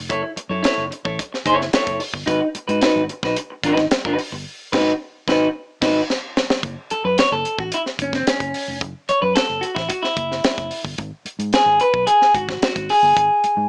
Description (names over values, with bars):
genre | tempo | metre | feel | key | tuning
funk | 110 BPM | 4/4 | straight | F# dorian | A4 = 440 Hz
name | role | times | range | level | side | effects
vintage muted fingered electric bass | bass | 0.0-13.7 s | E#1 to G#2 | -32 LUFS | equal | none
clean electric guitar | accompaniment | 0.1-13.7 s | B#3 to C#5 | -20 LUFS | equal | none
tight funk drum kit | drums | 0.1-13.6 s | crash cymbal, hi-hat, kick drum, snare drum | -25 LUFS | equal | none
room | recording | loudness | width
moderate studio reverb, RT60 0.6 s | small speaker sound | -20 LUFS | mono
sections
0.0-6.6 A section; 6.6-13.7 B section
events
band accent 4.5-6.6; drum fill 6.1-6.6; clean electric guitar solo 6.6-13.7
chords
0.0 F#m7; 2.3 G#m7; 6.6 F#m7; 11.0 G#m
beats
| 0.10 0.65 1.19 1.74 | 2.28 2.82 3.37 3.91 | 4.46 5.00 5.54 6.09 | 6.63 7.18 7.72 8.27 | 8.81 9.35 9.90 10.44 | 10.99 11.53 12.07 12.62 | 13.16